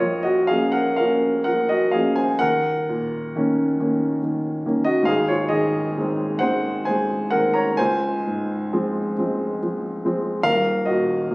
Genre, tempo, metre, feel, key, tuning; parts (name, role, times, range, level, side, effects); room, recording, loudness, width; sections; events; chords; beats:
classical, romantic nocturne for solo piano; 40-48 BPM (dotted quarters); 12/8; rubato; A4 = 440 Hz
warm baby grand piano; solo; 0.0-11.3 s; Eb1 to Bb5; -19 LUFS; equal
wet recital hall reverb, RT60 1.3 s; recorded on a phone in the room, studio reverb; -19 LUFS; side -23 dB against mid
0.0-11.3 A section
0.0 Bbm; 2.4 Ebm7; 5.1 Ab; 7.8 Dbmaj7; 10.4 Ebm
0.98 2.41 3.79 | 5.08 6.42 7.79 9.16 | 10.45